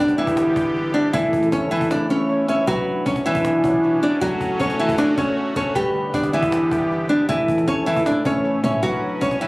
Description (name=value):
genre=hip hop, trap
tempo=156 BPM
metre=4/4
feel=half-time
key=B minor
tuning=A4 = 441 Hz
part: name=nylon-string guitar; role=melody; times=0.0-9.5 s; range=E3 to D5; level=-19 LUFS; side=equal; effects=none
part: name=sweeping resonant pad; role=sustained chords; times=0.0-9.5 s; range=C#3 to G4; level=-26 LUFS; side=equal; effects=chorus
part: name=clean 808-style bass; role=bass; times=0.0-9.5 s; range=F#1 to A2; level=-32 LUFS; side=equal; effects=none
part: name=cajon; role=drums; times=0.1-9.5 s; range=none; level=-31 LUFS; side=equal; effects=none
part: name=breathy flute-like synth lead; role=second line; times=1.1-9.2 s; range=A4 to E5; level=-29 LUFS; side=left 1 dB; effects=chorus, digital delay
room=light reverb, small room ambience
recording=recorded on a phone in the room, club reverb, compression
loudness=-17 LUFS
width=side -23 dB against mid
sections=0.0-2.7 A section; 2.7-9.5 A section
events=kick muted 1.9-2.7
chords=0.0 G; 1.1 A; 2.7 Bmadd9; 4.2 F#m; 5.8 G; 7.3 A; 8.8 Bmadd9